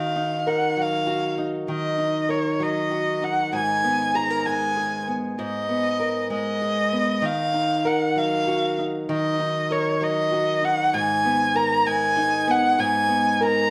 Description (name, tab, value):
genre	pop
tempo	65 BPM (dotted quarters)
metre	6/8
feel	straight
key	unclear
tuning	A4 = 441 Hz
part	dark violin	melody	0.0-13.7 s	C#5 to A#5	-25 LUFS	equal	none
part	nylon-string guitar	accompaniment	0.0-13.7 s	G#2 to A#4	-27 LUFS	equal	none
room	moderate stone room reverb, RT60 1.1 s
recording	band playing live in one room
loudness	-23 LUFS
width	mono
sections	0.0-13.7 A section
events	none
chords	0.0 D#m; 3.5 G#madd9; 7.2 D#m; 10.9 G#madd9